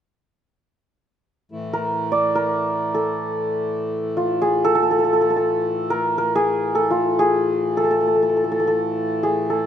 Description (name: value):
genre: indian classical, Hindustani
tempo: free time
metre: none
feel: none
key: unclear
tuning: A4 = 439 Hz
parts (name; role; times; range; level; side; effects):
- hand-pumped harmonium; drone; 1.5-9.7 s; A2 to E3; -29 LUFS; equal; none
- santur; melody; 1.7-9.7 s; F4 to D5; -18 LUFS; equal; none
room: moderate studio reverb, RT60 0.6 s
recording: dark, warm production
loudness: -18 LUFS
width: side -9 dB against mid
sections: 1.5-9.7 A section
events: none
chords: none